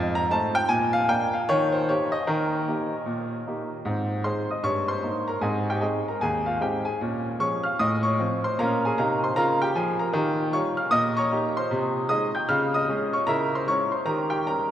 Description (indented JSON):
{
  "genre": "jazz, stride piano",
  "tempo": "153 BPM",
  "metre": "4/4",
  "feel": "swing 62% on 8ths",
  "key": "Ab major",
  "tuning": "A4 = 440 Hz",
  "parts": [
    { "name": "clear baby grand piano", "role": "solo", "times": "0.0-14.7 s", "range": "Eb2 to G6", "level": "-22 LUFS", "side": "equal", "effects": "none" }
  ],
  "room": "wet cathedral reverb, RT60 6.3 s",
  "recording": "in a vast, echoing space",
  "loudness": "-22 LUFS",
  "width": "side -11 dB against mid",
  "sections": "0.0-3.9 A section; 3.9-14.7 B section",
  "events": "none",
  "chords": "0.0 F7; 0.7 Bb; 1.5 Eb; 3.9 Ab; 4.6 Eb7/G; 5.4 Ab; 7.0 Bbm7; 7.8 F7/A; 8.6 Bbm; 10.1 Eb9; 10.9 Eb7/Bb; 11.7 Ab/C; 12.5 Db; 13.3 Dbm; 14.1 Eb7",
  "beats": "0.32 | 0.71 1.10 1.50 1.89 | 2.28 2.68 3.07 3.46 | 3.86 4.25 4.64 5.04 | 5.43 5.82 6.21 6.61 | 7.00 7.39 7.79 8.18 | 8.57 8.96 9.36 9.75 | 10.14 10.53 10.93 11.32 | 11.71 12.10 12.49 12.88 | 13.28 13.67 14.06 14.45"
}